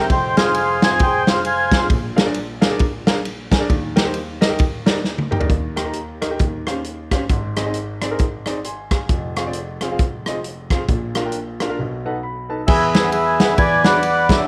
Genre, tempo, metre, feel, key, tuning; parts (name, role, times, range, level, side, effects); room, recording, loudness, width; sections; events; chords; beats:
uptempo gospel; 134 BPM; 4/4; swing 60% on 8ths; Eb major; A4 = 440 Hz
mellow accordion; melody; 0.0-1.9, 12.7-14.5 s; Ab4 to Ab5; -19 LUFS; equal; slapback echo
clear concert grand piano; accompaniment; 0.0-14.5 s; F1 to C6; -26 LUFS; equal
natural country drum kit; drums; 0.1-14.4 s; crash cymbal, hi-hat, kick drum, ride cymbal, rim click, snare drum, toms; -21 LUFS; equal
light reverb, small room ambience; -19 LUFS; mono
0.0-5.5 A section; 5.5-12.7 B section; 12.7-14.5 A section
drum fill 5.0-5.5; break 11.8-12.7; grand piano fill 11.8-12.7
0.1 Fm; 1.9 Bb7; 3.7 Eb; 6.4 Eb13; 7.3 Ab; 9.1 Fm; 10.9 Bb; 11.8 B7; 12.7 E; 13.6 E13
| 0.10 0.56 1.00 1.45 | 1.90 2.35 2.80 3.25 | 3.70 4.15 4.60 5.05 | 5.50 5.95 6.39 6.84 | 7.29 7.74 8.19 8.64 | 9.09 9.54 9.99 10.44 | 10.89 11.34 11.79 12.23 | 12.68 13.13 13.58 14.02 | 14.47